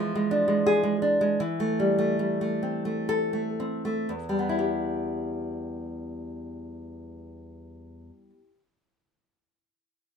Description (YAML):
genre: romantic piece for solo classical guitar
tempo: 38-58 BPM (dotted quarters)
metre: 6/8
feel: rubato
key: E minor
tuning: A4 = 440 Hz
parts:
  - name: nylon-string guitar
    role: solo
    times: 0.0-8.6 s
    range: E2 to A4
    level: -25 LUFS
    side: equal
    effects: none
room: moderate studio reverb, RT60 0.7 s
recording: minimal, uncompressed stereo recording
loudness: -24 LUFS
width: side -6 dB against mid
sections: 0.0-4.1 A section; 4.1-10.0 B section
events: slowing down 0.0-4.1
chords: 0.0 E7; 1.4 Am/E; 4.1 Em